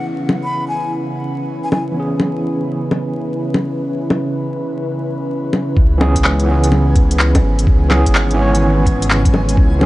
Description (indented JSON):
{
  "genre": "future garage",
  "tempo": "126 BPM",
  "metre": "4/4",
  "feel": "swing 65% on 16ths",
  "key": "C# minor",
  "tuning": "A4 = 440 Hz",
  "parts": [
    { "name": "breathy hollow jazz flute", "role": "melody", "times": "0.0-1.8 s", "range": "G#5 to B5", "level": "-26 LUFS", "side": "left 1 dB", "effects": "tape echo" },
    { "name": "overdriven tine electric piano", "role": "accompaniment", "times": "0.0-9.9 s", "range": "E3 to C#5", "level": "-21 LUFS", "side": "right 2 dB", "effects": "fast tremolo, sidechain pumping, tape echo" },
    { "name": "airy breathy pad", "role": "sustained chords", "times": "0.0-9.9 s", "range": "C#3 to B4", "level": "-23 LUFS", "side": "equal", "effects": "chorus, vintage 12-bit sampler grit, sidechain pumping" },
    { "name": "organic electronic drum kit", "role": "drums", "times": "0.3-9.9 s", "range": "bongos, handclaps, hi-hat", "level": "-17 LUFS", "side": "left 1 dB", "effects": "overdrive, small room reverb" },
    { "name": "dark detuned saw bass", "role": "bass", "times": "5.8-9.9 s", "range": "G#1 to C#2", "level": "-15 LUFS", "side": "equal", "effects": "sidechain pumping" },
    { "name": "electronic kick drum", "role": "drums", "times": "5.8-9.7 s", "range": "none", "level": "-14 LUFS", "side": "equal", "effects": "small room reverb" },
    { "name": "backwards swelling texture", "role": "texture", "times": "6.9-9.9 s", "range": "G#3 to G#5", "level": "-30 LUFS", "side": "equal", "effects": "built-in reverb" }
  ],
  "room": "light reverb",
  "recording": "vinyl crackle, nothing above 10.8 kHz",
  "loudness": "-14 LUFS",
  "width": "side -17 dB against mid",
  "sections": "0.0-5.8 A section; 5.8-9.9 B section",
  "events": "filter sweep on analog synth pad 0.0-5.8",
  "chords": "0.0 C#m7"
}